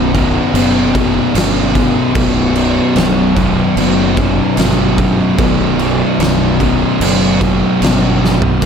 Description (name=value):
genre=stoner and doom metal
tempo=74 BPM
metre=4/4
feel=straight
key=unclear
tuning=A4 = 442 Hz
part: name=crunchy overdriven guitar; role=riff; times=0.0-8.7 s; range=B1 to B2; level=-18 LUFS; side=right 1 dB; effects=none
part: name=thick fuzz guitar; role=riff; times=0.0-8.7 s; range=B1 to B2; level=-16 LUFS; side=left 9 dB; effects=distortion
part: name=thick fuzz guitar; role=riff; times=0.0-8.7 s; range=B1 to B2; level=-18 LUFS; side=right 10 dB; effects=distortion
part: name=fuzz fingered electric bass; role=bass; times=0.0-8.7 s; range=B0 to G1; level=-19 LUFS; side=equal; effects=overdrive, tube saturation
part: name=oversized low-tuned drum kit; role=drums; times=0.1-8.7 s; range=crash cymbal, kick drum, snare drum, toms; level=-17 LUFS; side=right 1 dB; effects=none
room=studio ambience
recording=none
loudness=-10 LUFS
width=side -7 dB against mid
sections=0.0-8.7 A section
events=drum fill 8.2-8.6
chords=0.0 B5